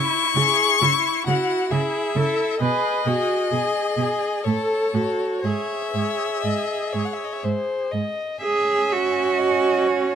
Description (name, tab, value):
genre	classical, slow romantic movement for string quartet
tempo	59-67 BPM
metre	3/4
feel	rubato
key	C# minor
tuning	A4 = 440 Hz
part	rich violin	melody	0.0-10.2 s	C#5 to C#6	-24 LUFS	left 8 dB	none
part	warm violin	second line	0.0-10.2 s	E4 to E5	-28 LUFS	left 3 dB	none
part	warm viola	accompaniment	0.0-10.2 s	C#4 to B4	-26 LUFS	right 2 dB	none
part	rich cello	bass	0.4-10.2 s	G#2 to G#4	-22 LUFS	right 4 dB	none
room	light reverb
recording	close, detailed microphones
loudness	-19 LUFS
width	side -8 dB against mid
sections	0.0-8.4 A section; 8.4-10.2 B section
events	none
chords	0.0 C#m; 2.6 G#m/B; 4.5 A; 5.4 C#m/G#; 8.4 C#m